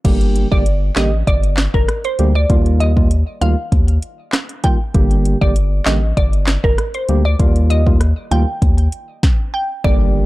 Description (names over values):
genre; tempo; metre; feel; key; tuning
dancehall; 98 BPM; 4/4; straight; G minor; A4 = 441 Hz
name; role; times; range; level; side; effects
percussive organ stab; accompaniment; 0.0-10.3 s; D3 to G4; -21 LUFS; right 2 dB; chorus, sidechain pumping
round analog bass; bass; 0.0-10.2 s; G1 to Eb2; -15 LUFS; equal; none
afro-pop drum kit; drums; 0.0-10.0 s; crash cymbal, handclaps, hi-hat, kick drum, rim click, snare drum; -16 LUFS; equal; none
glassy wavetable pluck; melody; 0.5-10.1 s; Bb4 to G5; -23 LUFS; right 1 dB; chorus, tape echo
bongos; percussion; 9.8-10.0 s; none; -30 LUFS; left 6 dB; none
impact; sound effects; 9.9-10.3 s; none; -22 LUFS; equal; none
room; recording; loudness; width
little or no reverb; dark, warm production; -13 LUFS; side -18 dB against mid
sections
0.0-9.8 A section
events
hi-hats muted 9.8-10.3; impact 9.8-10.3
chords
0.0 Gm; 2.5 Ebadd9; 4.9 Gm; 7.4 Ebadd9